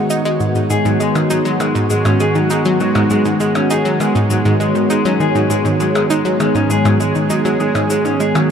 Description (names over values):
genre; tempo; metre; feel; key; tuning
ambient, sequencer-driven space music; 100 BPM; 4/4; straight; G# minor; A4 = 440 Hz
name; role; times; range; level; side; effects
mellow horn-like synth lead; melody; 0.0-0.6 s; D#5 to F#5; -29 LUFS; equal; none
sweeping resonant pad; sustained chords; 0.0-8.5 s; D#3 to G#4; -17 LUFS; equal; chorus, shimmer reverb
bubbling stepped-filter texture; texture; 0.0-8.5 s; C#5; -28 LUFS; right 8 dB; chorus, built-in reverb, shimmer reverb
analog pluck; riff; 0.1-8.4 s; G#2 to D#4; -17 LUFS; equal; chorus, shimmer reverb, tape echo
shaker and percussion blips; percussion; 0.1-8.5 s; none; -28 LUFS; left 2 dB; tape echo
electric guitar through a small old amp; arpeggios; 0.7-8.5 s; F#3 to G#4; -19 LUFS; moving between left 5 dB and right 3 dB; auto-pan, shimmer reverb, tape echo
room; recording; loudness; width
wet huge ambient reverb, RT60 7.6 s; in a vast, echoing space; -13 LUFS; side -7 dB against mid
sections
0.0-8.5 A section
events
none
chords
0.0 G#m7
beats
0.10 | 0.70 1.30 1.90 2.50 | 3.10 3.70 4.30 4.90 | 5.50 6.10 6.70 7.30 | 7.90 8.50